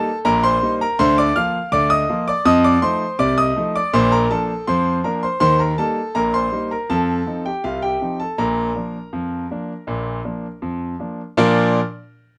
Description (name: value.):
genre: ragtime piano.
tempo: 81 BPM.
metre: 2/4.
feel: straight.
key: Bb major.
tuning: A4 = 439 Hz.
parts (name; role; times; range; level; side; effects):
clear concert grand piano; solo; 0.0-11.8 s; Bb1 to F6; -19 LUFS; equal; none.
room: light reverb.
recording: close, detailed microphones.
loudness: -19 LUFS.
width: mono.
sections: 0.0-11.4 A section; 11.4-12.4 B section.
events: none.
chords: 0.0 Eb; 1.0 Bb/D; 2.5 F7; 3.9 Bb; 5.4 Eb; 6.9 F7; 8.4 Bb.